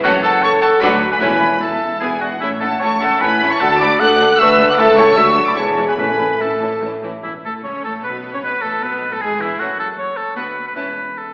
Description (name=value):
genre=quick classical-period movement for symphony orchestra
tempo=152 BPM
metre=3/4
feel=rubato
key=A major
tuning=A4 = 444 Hz
part: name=rich studio violin section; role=melody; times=0.0-10.9 s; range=E4 to F#6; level=-20 LUFS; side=equal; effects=none
part: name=clear oboe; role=second line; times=0.0-11.3 s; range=E4 to F#5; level=-18 LUFS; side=equal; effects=none
part: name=clear studio violin section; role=second line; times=0.0-10.9 s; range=B3 to C#5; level=-27 LUFS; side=equal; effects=none
part: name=mellow concert flute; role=second line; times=0.0-6.8 s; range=C#5 to D6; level=-19 LUFS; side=equal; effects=none
part: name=rich studio viola section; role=accompaniment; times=0.0-11.0 s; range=E3 to D4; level=-25 LUFS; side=equal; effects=none
part: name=dark French horn section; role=sustained chords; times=0.0-7.0 s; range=C#4 to B4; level=-17 LUFS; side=equal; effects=none
part: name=rich studio double bass section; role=bass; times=0.0-11.1 s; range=E1 to D2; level=-32 LUFS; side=equal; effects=none
part: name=rich symphonic cello section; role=bass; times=0.0-11.1 s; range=C#2 to C#3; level=-28 LUFS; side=equal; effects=none
part: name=timpani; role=percussion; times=1.2-1.8, 6.0-7.8 s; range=E2 to A2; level=-33 LUFS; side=equal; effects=none
room=wet recital hall reverb, RT60 1.5 s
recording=recorded in a church or concert hall, AM radio sound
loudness=-13 LUFS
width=side -30 dB against mid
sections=0.0-7.2 A section; 7.2-11.3 A section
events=none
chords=0.0 F#m; 0.8 Bm/D; 1.2 A/E; 2.0 E; 2.4 A; 3.6 D; 4.8 A/C#; 5.2 D; 5.6 E; 6.0 A; 7.2 A/E; 8.4 E; 9.6 F#m; 10.4 Bm/D; 10.8 A/E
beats=| 0.04 0.42 0.81 | 1.21 1.61 2.01 | 2.41 2.81 3.21 | 3.60 4.00 4.40 | 4.79 5.17 5.57 | 5.98 6.40 6.82 | 7.24 7.64 8.03 | 8.43 8.82 9.21 | 9.60 9.98 10.36 | 10.76 11.17